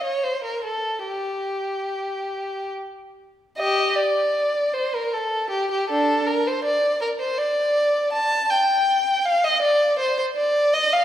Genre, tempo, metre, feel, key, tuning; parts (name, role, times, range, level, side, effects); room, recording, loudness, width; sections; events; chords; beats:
classical, baroque-style suite movement for unaccompanied violin; 70-81 BPM; 3/4; rubato; G minor; A4 = 441 Hz
warm violin; solo; 0.0-11.0 s; D4 to A5; -20 LUFS; equal
wet recital hall reverb, RT60 1.8 s; heard from further back in the room; -20 LUFS; side -11 dB against mid
0.0-3.6 A section; 3.6-11.0 B section
0.24 | 1.08 1.92 2.75 | 3.57 4.35 5.12 | 5.88 6.62 7.37 | 8.12 8.88 9.63 | 10.37